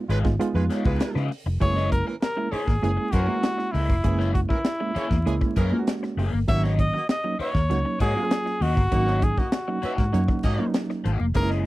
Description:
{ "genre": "funk", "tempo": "99 BPM", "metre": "4/4", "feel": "straight", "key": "unclear", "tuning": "A4 = 441 Hz", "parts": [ { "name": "reed electric piano", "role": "stabs", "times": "0.0-11.7 s", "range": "Eb3 to Gb4", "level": "-28 LUFS", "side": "right 3 dB", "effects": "overdrive, fast tremolo" }, { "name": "warm horn section", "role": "second line", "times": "0.1-11.6 s", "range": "Fb3 to Fb5", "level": "-33 LUFS", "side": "right 4 dB", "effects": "none" }, { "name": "crunchy overdriven guitar", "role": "accompaniment", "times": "0.1-11.7 s", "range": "Ab3 to Eb5", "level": "-31 LUFS", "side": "left 5 dB", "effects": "phaser" }, { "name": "vintage muted fingered electric bass", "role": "bass", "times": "0.1-11.7 s", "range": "F1 to Db3", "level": "-24 LUFS", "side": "equal", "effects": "none" }, { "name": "tight funk drum kit", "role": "drums", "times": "0.1-11.6 s", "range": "hi-hat, kick drum, snare drum", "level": "-26 LUFS", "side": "equal", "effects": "none" }, { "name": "breathy trumpet", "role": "melody", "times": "1.6-11.5 s", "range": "Fb4 to Fb5", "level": "-27 LUFS", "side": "equal", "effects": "none" } ], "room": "little or no reverb", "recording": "vinyl crackle", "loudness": "-21 LUFS", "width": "side -17 dB against mid", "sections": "0.0-1.6 A section; 1.6-11.7 B section", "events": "none", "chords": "0.0 Db9; 1.6 Gb9; 6.5 Ab9sus4" }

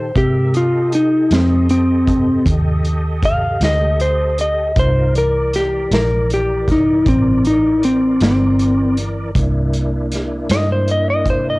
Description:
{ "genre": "slow blues", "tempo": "52 BPM (dotted quarters)", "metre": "12/8", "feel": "straight", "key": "unclear", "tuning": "A4 = 440 Hz", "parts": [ { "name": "clean lap steel guitar", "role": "melody", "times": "0.0-11.6 s", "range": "C4 to F5", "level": "-15 LUFS", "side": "left 1 dB", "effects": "cassette tape" }, { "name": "tonewheel organ", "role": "sustained chords", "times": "0.0-11.6 s", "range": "Eb3 to E5", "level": "-26 LUFS", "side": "equal", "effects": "slow rotary speaker, chorus vibrato, cassette tape, plate reverb" }, { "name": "vintage muted fingered electric bass", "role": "bass", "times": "0.0-11.6 s", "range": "G1 to C3", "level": "-19 LUFS", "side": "equal", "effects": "none" }, { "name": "vintage drum kit", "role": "drums", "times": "0.2-11.4 s", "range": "hi-hat, kick drum, snare drum", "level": "-21 LUFS", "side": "equal", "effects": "cassette tape" } ], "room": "light reverb", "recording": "home recording on cassette", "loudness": "-13 LUFS", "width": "side -22 dB against mid", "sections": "0.0-11.6 A section", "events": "electric slide guitar solo 0.0-11.6", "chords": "0.0 F9; 4.8 C9" }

